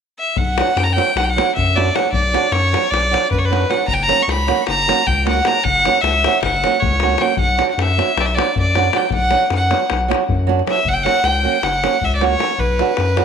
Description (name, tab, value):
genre	balkan folk, Balkan wedding band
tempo	310 BPM (eighths)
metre	9/8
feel	straight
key	B harmonic minor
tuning	A4 = 438 Hz
part	bright violin	melody	0.2-13.2 s	B4 to C#6	-17 LUFS	left 1 dB	tape echo
part	saturated sub bass	bass	0.4-13.2 s	F#1 to F#2	-20 LUFS	left 1 dB	none
part	davul	percussion	0.4-13.2 s	none	-23 LUFS	left 7 dB	none
part	flamenco guitar	accompaniment	0.6-13.2 s	F#3 to F#4	-20 LUFS	right 10 dB	none
room	moderate echo chamber reverb, RT60 1.5 s, small room ambience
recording	1960s-style stereo with parts hard left and right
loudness	-14 LUFS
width	side -7 dB against mid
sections	0.4-13.2 A section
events	none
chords	0.4 Bm; 3.9 F#; 7.4 Bm; 10.8 F#; 12.6 Bm